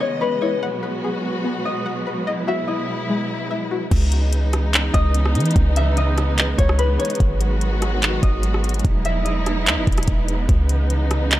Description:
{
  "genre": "hip hop, atmospheric cloud-rap",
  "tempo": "146 BPM",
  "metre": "4/4",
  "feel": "half-time",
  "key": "C# minor",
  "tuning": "A4 = 438 Hz",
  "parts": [
    { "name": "concert harp", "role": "melody", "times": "0.0-11.0 s", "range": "B4 to E5", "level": "-27 LUFS", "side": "left 3 dB", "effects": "tape echo" },
    { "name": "dark symphonic string section", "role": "sustained chords", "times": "0.0-11.4 s", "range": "B2 to D#5", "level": "-24 LUFS", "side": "right 1 dB", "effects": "sidechain pumping" },
    { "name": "string-like resonator pluck", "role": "arpeggios", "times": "0.0-3.9 s", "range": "G#3 to F#5", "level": "-28 LUFS", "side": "left 4 dB", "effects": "chorus, tape echo" },
    { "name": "downlifter", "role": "sound effects", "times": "0.0-0.6 s", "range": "none", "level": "barely audible", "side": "none", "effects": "none" },
    { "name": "warm 808-style bass", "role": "bass", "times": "3.9-11.4 s", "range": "E1 to E3", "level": "-19 LUFS", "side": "equal", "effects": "none" },
    { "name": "smooth R&B drum kit", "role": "drums", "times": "3.9-11.4 s", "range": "crash cymbal, handclaps, hi-hat, kick drum, rim click", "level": "-20 LUFS", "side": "equal", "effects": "none" }
  ],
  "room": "little or no reverb",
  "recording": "none",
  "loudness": "-18 LUFS",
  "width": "side -14 dB against mid",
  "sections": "0.0-3.9 A section; 3.9-11.4 B section",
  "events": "none",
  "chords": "0.0 C#m9; 0.6 G#m7; 2.3 Emaj9; 3.9 C#m9; 7.2 G#m7; 8.8 Emaj9; 10.5 C#m9"
}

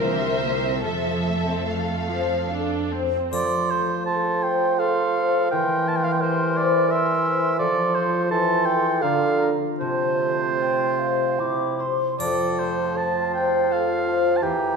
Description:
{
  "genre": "classical, slow romantic movement for symphony orchestra",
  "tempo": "71-87 BPM",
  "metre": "3/4",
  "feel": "rubato",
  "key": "F major",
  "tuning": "A4 = 440 Hz",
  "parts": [
    { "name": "warm studio violin section", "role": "melody", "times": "0.0-2.9 s", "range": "E5 to F5", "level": "-30 LUFS", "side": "left 2 dB", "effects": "none" },
    { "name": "warm studio violin section", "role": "second line", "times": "0.0-2.9 s", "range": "A4 to C5", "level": "-30 LUFS", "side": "equal", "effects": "none" },
    { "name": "rich studio viola section", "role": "accompaniment", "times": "0.0-3.3 s", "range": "C3 to Bb4", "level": "-28 LUFS", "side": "right 4 dB", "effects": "none" },
    { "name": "concert harp", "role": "arpeggios", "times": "0.0-14.8 s", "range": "E2 to C5", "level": "-26 LUFS", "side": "left 6 dB", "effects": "none" },
    { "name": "warm studio cello section", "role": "bass", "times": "0.0-3.1 s", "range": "C2 to F2", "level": "-30 LUFS", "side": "right 3 dB", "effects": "none" },
    { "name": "clear clarinet", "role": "second line", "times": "3.3-14.8 s", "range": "E4 to Bb4", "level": "-30 LUFS", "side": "right 1 dB", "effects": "none" },
    { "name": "mellow hollow silver concert flute", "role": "second line", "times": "3.3-14.8 s", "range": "F5 to D6", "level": "-29 LUFS", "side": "right 1 dB", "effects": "none" },
    { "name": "warm oboe", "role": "second line", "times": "3.3-14.8 s", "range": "C5 to A5", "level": "-25 LUFS", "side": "right 3 dB", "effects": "none" },
    { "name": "mellow bassoon", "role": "accompaniment", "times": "3.3-14.8 s", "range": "C3 to F3", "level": "-25 LUFS", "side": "right 4 dB", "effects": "none" },
    { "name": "triangle", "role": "percussion", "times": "3.3-4.8, 12.2-13.7 s", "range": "none", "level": "-40 LUFS", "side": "left 4 dB", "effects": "none" }
  ],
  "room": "wet scoring stage reverb, RT60 1.7 s",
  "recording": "minimal, uncompressed stereo recording",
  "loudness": "-20 LUFS",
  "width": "side -5 dB against mid",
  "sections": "0.0-3.3 A section; 3.3-14.8 A section",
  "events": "none",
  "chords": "0.0 C7; 0.8 F; 5.5 C7/E; 7.6 F; 9.0 Bb/D; 9.8 F/C; 11.4 C; 12.2 F"
}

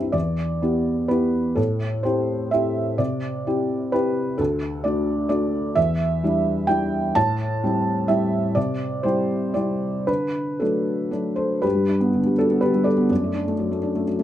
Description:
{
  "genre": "neoclassical minimalist piano",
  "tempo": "112-134 BPM",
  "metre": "3/4",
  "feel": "rubato",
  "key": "G major",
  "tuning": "A4 = 440 Hz",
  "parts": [
    { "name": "felt-muted upright piano", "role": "solo", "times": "0.0-14.2 s", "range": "C2 to A5", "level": "-20 LUFS", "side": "equal", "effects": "none" }
  ],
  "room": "light reverb",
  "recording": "none",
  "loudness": "-20 LUFS",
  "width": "side -12 dB against mid",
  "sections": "0.1-11.6 A section; 11.6-14.2 B section",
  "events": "none",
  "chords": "0.1 Em7; 1.6 Am7; 3.0 Cadd9; 4.4 D; 5.8 Em7; 7.2 Am7; 8.6 Cadd9; 10.1 D; 11.6 G; 13.1 D/F#"
}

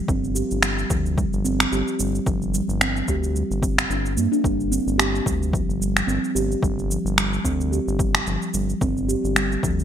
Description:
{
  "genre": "organic downtempo",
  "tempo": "110 BPM",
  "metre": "4/4",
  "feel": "swing 56% on 16ths",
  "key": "unclear",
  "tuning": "A4 = 438 Hz",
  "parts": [
    { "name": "steel tongue drum", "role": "arpeggios", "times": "0.0-9.7 s", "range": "F3 to G4", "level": "-24 LUFS", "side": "right 2 dB", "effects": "digital delay" },
    { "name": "round analog bass", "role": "bass", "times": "0.1-9.8 s", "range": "G1 to G2", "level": "-26 LUFS", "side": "left 1 dB", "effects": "sidechain pumping" },
    { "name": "electronic kick drum", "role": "drums", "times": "0.1-9.8 s", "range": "none", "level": "-26 LUFS", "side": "left 1 dB", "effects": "overdrive" },
    { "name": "electronic shaker and finger snaps", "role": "drums", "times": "0.1-9.8 s", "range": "none", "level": "-24 LUFS", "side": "equal", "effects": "overdrive, gated reverb" }
  ],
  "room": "light reverb",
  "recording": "bright 1980s-style digital production",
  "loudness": "-20 LUFS",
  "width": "side -9 dB against mid",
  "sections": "0.0-9.8 A section",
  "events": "none",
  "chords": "0.0 G5"
}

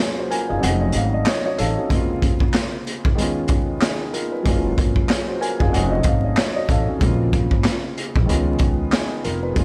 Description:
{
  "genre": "hip hop, boom-bap hip-hop",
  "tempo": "94 BPM",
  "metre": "4/4",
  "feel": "swing 58% on 16ths",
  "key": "Bb minor",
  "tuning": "A4 = 441 Hz",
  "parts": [
    { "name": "dark baby grand piano", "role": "accompaniment", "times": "0.0-9.6 s", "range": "F2 to Ab5", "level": "-25 LUFS", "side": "equal", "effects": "cassette tape, high-pass filter, low-pass filter" },
    { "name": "raw garage drum kit", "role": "drums", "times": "0.0-9.6 s", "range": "handclaps, hi-hat, kick drum, snare drum", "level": "-23 LUFS", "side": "equal", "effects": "vintage 12-bit sampler grit" },
    { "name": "upright bass", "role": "bass", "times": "0.5-9.6 s", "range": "F1 to Db2", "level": "-25 LUFS", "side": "equal", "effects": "none" }
  ],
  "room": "moderate lush hall reverb, RT60 2.0 s",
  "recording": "dreamy mix soaked in reverb, vinyl crackle",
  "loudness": "-20 LUFS",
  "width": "mono",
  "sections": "0.0-9.6 A section",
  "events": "break 0.0-1.9; kick muted 0.6-1.9",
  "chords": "0.0 Gbmaj9; 0.6 F7b9b13; 1.9 Bbm9; 3.2 Db9; 4.5 Gbmaj9; 5.7 F7b9b13; 7.0 Bbm9; 8.3 Db9"
}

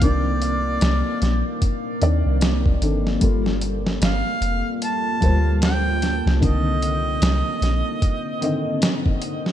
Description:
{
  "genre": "trip hop",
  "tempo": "75 BPM",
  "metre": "4/4",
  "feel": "swing 60% on 16ths",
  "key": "unclear",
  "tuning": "A4 = 441 Hz",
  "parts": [
    { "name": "mellow harmonica", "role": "melody", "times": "0.0-8.8 s", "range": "D5 to A5", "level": "-27 LUFS", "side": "right 2 dB", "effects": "tape echo" },
    { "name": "felt-muted upright piano", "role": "accompaniment", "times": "0.0-9.5 s", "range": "D3 to Eb5", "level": "-26 LUFS", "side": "left 2 dB", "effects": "harmonic tremolo" },
    { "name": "deep dark ambient pad", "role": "sustained chords", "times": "0.0-9.5 s", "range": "G3 to Eb5", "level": "-28 LUFS", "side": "equal", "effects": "chorus, built-in reverb" },
    { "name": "soft 808-style bass", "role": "bass", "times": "0.0-7.8 s", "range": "F1 to Eb2", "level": "-21 LUFS", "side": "equal", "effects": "none" },
    { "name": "dusty soul sampler-style drum kit", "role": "drums", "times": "0.0-9.5 s", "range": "hi-hat, kick drum, snare drum", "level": "-22 LUFS", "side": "equal", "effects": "vintage 12-bit sampler grit, studio reverb, gated reverb" }
  ],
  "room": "light reverb, digital ambience",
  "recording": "bright 1980s-style digital production",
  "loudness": "-18 LUFS",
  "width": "side -11 dB against mid",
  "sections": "0.0-9.5 A section",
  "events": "none",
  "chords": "0.0 Cm9; 3.2 Gm9; 6.4 Cm9"
}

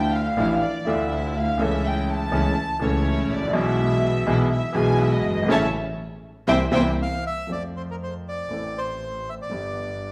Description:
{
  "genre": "tango",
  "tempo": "122 BPM",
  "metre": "4/4",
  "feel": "rubato",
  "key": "unclear",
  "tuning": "A4 = 440 Hz",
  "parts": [
    { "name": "warm studio violin section", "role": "second line", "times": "0.0-6.9 s", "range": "C5 to A5", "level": "-29 LUFS", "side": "equal", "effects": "none" },
    { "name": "warm concert grand piano", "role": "accompaniment", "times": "0.0-10.1 s", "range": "F#1 to A4", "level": "-27 LUFS", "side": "equal", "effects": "none" },
    { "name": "dark studio string section", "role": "stabs", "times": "0.0-6.9 s", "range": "F3 to E4", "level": "-32 LUFS", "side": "equal", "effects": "none" },
    { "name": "warm double bass", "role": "bass", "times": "0.0-10.1 s", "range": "G1 to F2", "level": "-30 LUFS", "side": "equal", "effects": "none" },
    { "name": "bandoneon", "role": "melody", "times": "7.0-10.1 s", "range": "Bb4 to F5", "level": "-32 LUFS", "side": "equal", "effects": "none" }
  ],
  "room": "wet recital hall reverb, RT60 1.5 s",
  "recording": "recorded in a church or concert hall",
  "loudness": "-23 LUFS",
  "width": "mono",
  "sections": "0.0-7.5 A section; 7.5-10.1 B section",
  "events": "violin section solo 0.0-7.5; band accent 5.5-7.5",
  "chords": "0.0 Dmadd9; 1.6 A/C#; 3.6 E/B; 5.5 A; 6.5 C7; 7.5 F; 8.5 Am; 9.5 G"
}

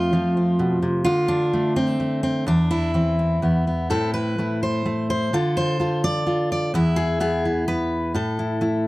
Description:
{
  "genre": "folk, solo fingerstyle acoustic guitar",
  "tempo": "127 BPM",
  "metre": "3/4",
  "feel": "straight",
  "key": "A minor",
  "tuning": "A4 = 442 Hz",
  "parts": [
    { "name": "fingerpicked steel-string acoustic guitar", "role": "solo", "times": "0.0-8.9 s", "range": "E2 to D5", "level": "-19 LUFS", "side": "equal", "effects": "none" }
  ],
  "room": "light reverb",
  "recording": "dry, close 1970s-style studio recording",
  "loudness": "-19 LUFS",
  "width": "side -19 dB against mid",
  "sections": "0.0-8.9 A section",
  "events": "none",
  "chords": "0.0 F; 1.1 Dm; 2.5 Cadd9/E; 3.4 E5; 3.9 Am; 5.3 Dm; 6.7 E; 8.1 A5"
}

